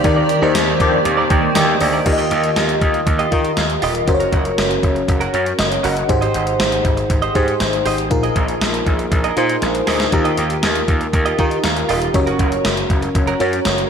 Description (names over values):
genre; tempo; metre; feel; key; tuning
1980s-style pop; 119 BPM; 4/4; straight; Eb major; A4 = 440 Hz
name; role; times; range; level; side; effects
FM electric piano with soft pad layer; accompaniment; 0.0-13.9 s; Ab2 to G5; -18 LUFS; left 1 dB; chorus
granular cloud pad; sustained chords; 0.0-2.0 s; Eb3 to D5; -22 LUFS; right 2 dB; built-in reverb
direct-recorded clean electric guitar; riff; 0.0-13.8 s; Db4 to Eb5; -24 LUFS; right 5 dB; wide subtle chorus, tape echo
dark horn section; stabs; 0.0-1.0 s; Eb3 to G4; -24 LUFS; left 2 dB; none
gritty slap bass; bass; 0.0-13.8 s; Eb1 to Eb3; -22 LUFS; equal; overdrive
gated 80s digital drum machine; drums; 0.0-13.9 s; crash cymbal, hi-hat, kick drum, snare drum, tambourine; -20 LUFS; equal; gated reverb, gated reverb snare
room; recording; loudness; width
wet lush hall reverb, RT60 2.0 s; dreamy mix soaked in reverb; -14 LUFS; side -7 dB against mid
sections
0.0-2.1 A section; 2.1-13.9 B section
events
drum fill 9.6-10.1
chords
0.0 Ebmaj7; 2.1 Ebadd9; 4.1 Gb; 6.1 Abmaj7; 8.1 Bb7sus4; 10.1 Ebadd9; 12.1 Gb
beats
| 0.04 0.55 1.05 1.56 | 2.06 2.56 3.07 3.57 | 4.08 4.58 5.08 5.59 | 6.09 6.60 7.10 7.61 | 8.11 8.62 9.12 9.62 | 10.13 10.63 11.14 11.64 | 12.14 12.65 13.15 13.66